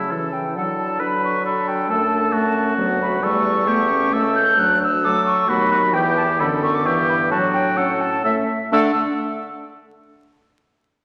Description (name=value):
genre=quick classical-period movement for wind quintet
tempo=133 BPM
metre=3/4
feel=rubato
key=D major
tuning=A4 = 441 Hz
part: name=concert flute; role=melody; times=0.0-9.0 s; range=E5 to G6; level=-24 LUFS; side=equal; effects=none
part: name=warm oboe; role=second line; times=0.0-8.9 s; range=E4 to B4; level=-24 LUFS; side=equal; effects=none
part: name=mellow clarinet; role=accompaniment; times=0.0-8.9 s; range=A3 to E4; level=-30 LUFS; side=equal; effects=none
part: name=warm French horn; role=accompaniment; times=0.0-8.9 s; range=D3 to A3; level=-27 LUFS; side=equal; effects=none
part: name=mellow bassoon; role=bass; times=0.0-8.9 s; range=C#2 to D3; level=-30 LUFS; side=equal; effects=none
room=wet scoring stage reverb, RT60 1.7 s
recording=vinyl crackle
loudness=-19 LUFS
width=mono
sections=0.0-8.7 A section; 8.7-10.1 B section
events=none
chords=0.0 A7/C#; 0.6 D; 1.9 D/F#; 3.2 A7/E; 4.6 D; 5.5 B/D#; 5.9 Em; 6.8 Em/G; 7.3 D/A; 8.2 A; 8.7 D5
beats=0.12 | 0.57 1.01 1.46 | 1.90 2.34 2.79 | 3.23 3.68 4.13 | 4.58 5.03 5.48 | 5.93 6.39 6.85 | 7.31 7.77 8.24 | 8.73